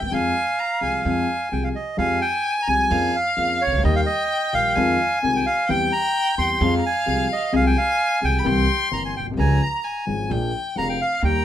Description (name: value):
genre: tango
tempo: 130 BPM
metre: 4/4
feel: rubato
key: F minor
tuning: A4 = 440 Hz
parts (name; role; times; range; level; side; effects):
- rich violin; second line; 0.0-11.4 s; F5 to C6; -25 LUFS; left 2 dB; none
- dark concert grand piano; accompaniment; 0.0-11.4 s; F1 to Ab4; -24 LUFS; left 3 dB; none
- upright bass; bass; 0.0-11.4 s; F1 to F2; -24 LUFS; right 1 dB; none
- bandoneon; melody; 0.1-11.4 s; Db5 to C6; -22 LUFS; right 2 dB; none
room: moderate studio ambience, RT60 0.5 s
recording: minimal, uncompressed stereo recording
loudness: -19 LUFS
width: side -11 dB against mid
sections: 0.0-2.0 A section; 2.0-11.4 B section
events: none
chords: 0.1 Fm; 2.0 Fmadd9; 2.9 Bbm7/F; 3.8 Eb; 4.8 Fm7; 5.7 C/E; 6.6 Fm/C; 8.5 C7; 9.4 Db; 10.3 Bb7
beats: | 0.12 0.59 1.05 1.52 | 1.99 2.45 2.91 3.38 | 3.84 4.30 4.76 5.22 | 5.68 6.15 6.61 7.07 | 7.53 7.99 8.46 8.92 | 9.38 9.85 10.31 10.77 | 11.23